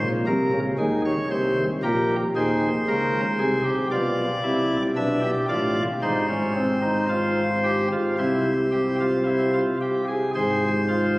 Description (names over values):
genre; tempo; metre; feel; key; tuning
classical, baroque-style 3-part fugue for pipe organ; 56 BPM; 4/4; straight; F minor; A4 = 439 Hz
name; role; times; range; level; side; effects
pipe organ, cornet; solo; 0.0-11.2 s; Ab1 to E5; -20 LUFS; equal; none
room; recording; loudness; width
wet cathedral reverb, RT60 4.4 s; recorded on a phone in the room, club reverb, compression; -20 LUFS; side -21 dB against mid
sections
0.0-10.3 A section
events
none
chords
0.0 Ab; 1.8 Gdim/Bb; 3.9 G7/B; 6.0 Fm/Ab; 8.2 C; 10.3 Fm/Ab